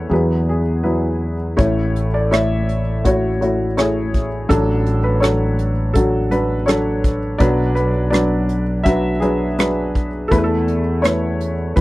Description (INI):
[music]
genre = acoustic folk-pop ballad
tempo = 82 BPM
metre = 4/4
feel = straight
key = A major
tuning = A4 = 440 Hz
[part]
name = warm upright piano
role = melody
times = 0.0-11.8 s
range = A1 to E5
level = -18 LUFS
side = equal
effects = none
[part]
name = fretless electric bass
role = bass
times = 0.0-11.8 s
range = A1 to E2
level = -20 LUFS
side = equal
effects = none
[part]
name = soft brush drum kit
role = drums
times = 1.6-11.8 s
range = hi-hat, kick drum, rim click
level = -18 LUFS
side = equal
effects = none
[sound]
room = little or no reverb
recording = dry, close 1970s-style studio recording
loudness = -15 LUFS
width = side -19 dB against mid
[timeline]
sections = 0.0-1.6 A section; 1.6-11.8 B section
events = none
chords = 0.1 Eadd9; 1.6 A; 7.4 Bm; 10.3 Esus4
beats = 0.10 0.84 | 1.58 2.31 3.04 3.77 | 4.50 5.22 5.95 6.67 | 7.40 8.13 8.86 9.59 | 10.31 11.04 11.76